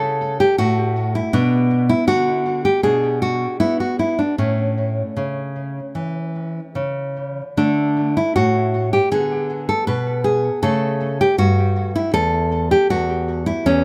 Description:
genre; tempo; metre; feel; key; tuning
classical, baroque-style dance for nylon-string guitar; 79 BPM; 4/4; rubato; unclear; A4 = 440 Hz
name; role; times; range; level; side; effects
nylon-string guitar; solo; 0.0-13.8 s; E2 to B4; -19 LUFS; equal; tape echo
room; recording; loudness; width
moderate studio reverb, RT60 0.6 s; none; -19 LUFS; mono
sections
0.0-13.8 A section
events
none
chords
0.0 A/C#; 1.3 Bmadd11; 4.4 A; 7.6 D5; 9.1 Bm6; 10.6 A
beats
0.59 | 1.34 2.08 2.84 3.61 | 4.38 5.17 5.95 6.75 | 7.57 8.35 9.12 9.88 | 10.64 11.39 12.14 12.90 | 13.66

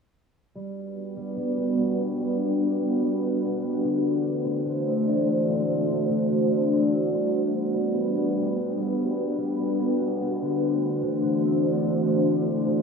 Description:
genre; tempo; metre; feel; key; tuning
hip hop; 146 BPM; 4/4; half-time; G major; A4 = 440 Hz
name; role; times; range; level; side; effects
glassy FM pad; sustained chords; 1.2-12.8 s; E3 to C5; -23 LUFS; equal; ensemble chorus, built-in reverb
electric guitar at the edge of break-up; arpeggios; 0.6-12.8 s; D3 to F#4; -31 LUFS; left 1 dB; wide subtle chorus, tape echo
room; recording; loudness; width
wet lush hall reverb, RT60 2.2 s; dreamy mix soaked in reverb, low-pass filter; -22 LUFS; side -5 dB against mid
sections
0.6-12.8 A section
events
filter sweep 0.6-12.8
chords
0.6 Gmaj7; 3.8 D9; 7.1 Gmaj7; 10.4 D9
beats
| 0.55 0.96 1.37 1.78 | 2.20 2.61 3.02 3.43 | 3.84 4.25 4.66 5.07 | 5.48 5.89 6.30 6.72 | 7.13 7.54 7.95 8.36 | 8.77 9.18 9.59 10.00 | 10.41 10.83 11.24 11.65 | 12.06 12.47

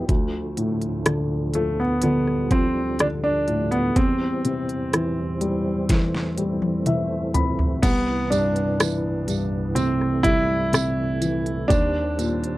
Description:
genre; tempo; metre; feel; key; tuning
pop ballad; 62 BPM; 4/4; straight; unclear; A4 = 440 Hz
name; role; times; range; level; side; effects
dark upright piano; accompaniment; 0.0-12.6 s; C2 to B5; -24 LUFS; left 1 dB; none
tonewheel organ; sustained chords; 0.0-12.6 s; C2 to C4; -28 LUFS; right 2 dB; chorus vibrato, slow rotary speaker
smooth R&B drum kit; drums; 0.1-12.6 s; crash cymbal, hi-hat, kick drum, rim click, snare drum, toms; -22 LUFS; equal; none
warm concert grand piano; melody; 1.6-12.6 s; A3 to E4; -24 LUFS; right 1 dB; none
tambourine; percussion; 7.8-12.4 s; none; -34 LUFS; right 12 dB; none
room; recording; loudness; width
little or no reverb; dry, close 1970s-style studio recording; -20 LUFS; side -17 dB against mid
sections
0.0-7.8 A section; 7.8-12.6 B section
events
drum fill 5.9-7.8; upright piano fill 6.4-7.8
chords
0.1 Dm; 4.0 C/E; 7.8 Cmaj7; 11.7 Eb6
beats
| 0.09 1.06 2.02 2.99 | 3.96 4.93 5.90 6.86 | 7.83 8.80 9.77 10.73 | 11.70

